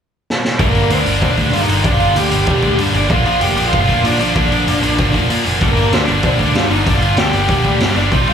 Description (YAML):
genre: punk rock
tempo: 192 BPM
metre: 4/4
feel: straight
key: G minor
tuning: A4 = 440 Hz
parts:
  - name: raw garage drum kit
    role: drums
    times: 0.3-8.3 s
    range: hi-hat, kick drum, snare drum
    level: -18 LUFS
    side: equal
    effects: none
  - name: lead guitar through a small cranked amp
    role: melody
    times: 0.6-8.3 s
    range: A3 to G5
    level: -18 LUFS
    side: equal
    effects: overdrive, tape echo
  - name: crunchy overdriven guitar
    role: riff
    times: 0.6-8.3 s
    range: G2 to Eb4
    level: -20 LUFS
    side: right 11 dB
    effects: slapback echo
  - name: tight distorted guitar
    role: riff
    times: 0.6-8.3 s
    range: G2 to C4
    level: -19 LUFS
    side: left 12 dB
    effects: distortion, slapback echo
  - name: growling picked electric bass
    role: bass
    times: 0.6-8.3 s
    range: F1 to Bb2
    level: -19 LUFS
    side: equal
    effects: overdrive
room: studio ambience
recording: live gig heard through the venue's PA, club reverb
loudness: -12 LUFS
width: side -8 dB against mid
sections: 0.6-8.3 A section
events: drum fill 0.3-0.6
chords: 0.0 N.C.; 0.6 Gm